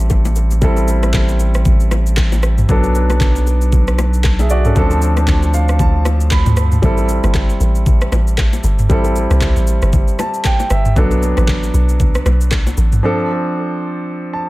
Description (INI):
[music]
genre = amapiano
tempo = 116 BPM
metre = 4/4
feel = swing 58% on 16ths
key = A minor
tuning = A4 = 442 Hz
[part]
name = warm concert grand piano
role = accompaniment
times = 0.0-14.5 s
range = F3 to B5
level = -19 LUFS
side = right 1 dB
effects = dub echo
[part]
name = saturated sub bass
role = bass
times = 0.0-6.8 s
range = A1 to D2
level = -14 LUFS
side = equal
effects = none
[part]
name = smooth R&B drum kit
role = drums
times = 0.1-13.0 s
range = handclaps, kick drum, rim click, shaker, toms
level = -17 LUFS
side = equal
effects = overdrive
[part]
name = bongos and congas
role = percussion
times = 0.1-12.8 s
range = none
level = -26 LUFS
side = left 4 dB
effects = none
[part]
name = deep log drum bass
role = bass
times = 6.8-13.0 s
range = G1 to C2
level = -15 LUFS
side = equal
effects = none
[sound]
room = digital ambience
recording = echo-heavy mix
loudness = -12 LUFS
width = side -19 dB against mid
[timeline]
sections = 0.0-14.5 A section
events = grand piano fill 5.3-6.8, 9.9-11.0, 14.1-14.5; break 13.0-14.5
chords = 0.0 Am7; 2.7 Bm7; 4.8 Dm7; 6.8 Am7; 11.0 Bm7; 13.0 Dm7